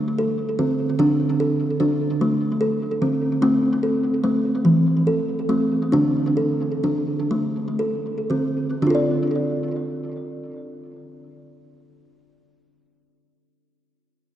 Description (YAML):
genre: world meditative, meditative tuned percussion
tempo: 37-50 BPM (dotted quarters)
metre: 6/8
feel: straight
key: D minor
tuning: A4 = 440 Hz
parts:
  - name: kalimba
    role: solo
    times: 0.0-13.2 s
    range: D3 to D5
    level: -19 LUFS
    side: equal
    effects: tape echo
room: wet cathedral reverb, RT60 4.3 s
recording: worn, warbling old tape, cassette tape, warbly pitch drift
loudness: -19 LUFS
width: side -11 dB against mid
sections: 0.0-8.8 A section; 8.8-12.1 B section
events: slowing down 3.4-8.8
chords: 0.0 D5; 3.4 Am; 5.9 D5; 8.8 Dm